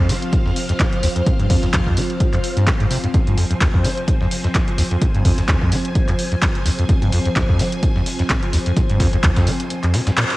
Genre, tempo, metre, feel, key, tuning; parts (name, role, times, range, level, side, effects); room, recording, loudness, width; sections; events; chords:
acid house; 128 BPM; 4/4; swing 56% on 16ths; F minor; A4 = 443 Hz
string machine, full ensemble; sustained chords; 0.0-10.4 s; F3 to Ab5; -24 LUFS; equal; phaser, ensemble chorus, sidechain pumping, cassette tape
acid bass, saw; riff; 0.0-10.2 s; Eb2 to F3; -19 LUFS; equal; overdrive, wide subtle chorus, sidechain pumping, cassette tape
breakbeat sampler-style drum kit; drums; 0.1-10.4 s; hi-hat, snare drum; -35 LUFS; equal
punchy analog drum machine; drums; 0.1-10.4 s; handclaps, hi-hat; -24 LUFS; equal; cassette tape
electronic kick drum; drums; 0.3-9.4 s; -18 LUFS; equal; cassette tape
light reverb; home recording on cassette; -16 LUFS; side -18 dB against mid
0.0-10.4 A section
break 9.7-10.4; band accent 10.2
0.0 F5